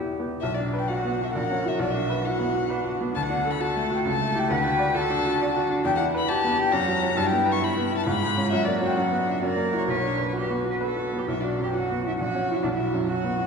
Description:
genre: quick classical-period movement for piano trio.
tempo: 133 BPM.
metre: 3/4.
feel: straight.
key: B minor.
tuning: A4 = 436 Hz.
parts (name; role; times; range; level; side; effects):
dark violin; melody; 0.0-13.5 s; G4 to C#6; -27 LUFS; left 6 dB; none.
bright baby grand piano; accompaniment; 0.0-13.5 s; A#1 to D5; -25 LUFS; right 1 dB; none.
rich cello; second line; 0.9-13.5 s; D4 to B4; -30 LUFS; right 3 dB; none.
room: wet church reverb, RT60 3.3 s.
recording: recorded in a church or concert hall.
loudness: -22 LUFS.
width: side -5 dB against mid.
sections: 0.4-11.3 A section; 11.3-13.5 A section.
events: none.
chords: 0.4 Bm; 1.3 F#7/A#; 1.8 Bm; 3.1 D; 4.1 A7/C#; 4.5 D; 5.8 Em; 6.7 F#; 7.2 Em/G; 8.1 C#7/G#; 8.5 F#; 9.0 Bm/F#; 9.4 F#7; 9.9 Bm; 11.3 B5; 12.2 F#7/A#; 12.7 B5.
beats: | 0.42 0.88 1.34 | 1.79 2.24 2.69 | 3.15 3.60 4.05 | 4.50 4.95 5.40 | 5.84 6.29 6.73 | 7.17 7.62 8.07 | 8.52 8.97 9.42 | 9.88 10.35 10.82 | 11.28 11.74 12.20 | 12.65 13.10.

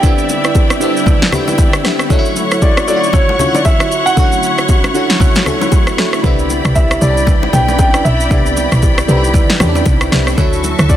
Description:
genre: amapiano.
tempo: 116 BPM.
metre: 4/4.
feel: swing 58% on 16ths.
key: unclear.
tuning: A4 = 439 Hz.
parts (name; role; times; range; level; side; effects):
warm concert grand piano; melody; 0.0-11.0 s; C#5 to G5; -17 LUFS; right 1 dB; digital delay.
barking FM electric piano; accompaniment; 0.0-11.0 s; D3 to G4; -18 LUFS; left 1 dB; phaser.
rich studio string section; sustained chords; 0.0-11.0 s; E4 to C#6; -20 LUFS; left 2 dB; none.
marimba with medium mallets; stabs; 0.0-11.0 s; E4 to D5; -22 LUFS; right 6 dB; digital delay.
deep house drum kit; drums; 0.0-11.0 s; kick drum, rim click, shaker, snare drum; -13 LUFS; equal; vintage 12-bit sampler grit, soft clipping on snare.
congas and bongos; percussion; 0.0-11.0 s; none; -22 LUFS; left 4 dB; none.
tight log drum bass; bass; 6.2-11.0 s; B1 to E2; -15 LUFS; equal; none.
room: small room ambience.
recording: dense, heavily limited modern master.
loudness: -10 LUFS.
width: side -11 dB against mid.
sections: 0.0-11.0 A section.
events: none.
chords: 0.0 Cmaj9; 2.1 Dmaj9; 6.2 Cmaj9; 10.4 Dmaj9.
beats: | 0.03 0.55 1.07 1.59 | 2.10 2.62 3.14 3.65 | 4.17 4.69 5.21 5.72 | 6.24 6.76 7.28 7.79 | 8.31 8.83 9.35 9.86 | 10.38 10.90.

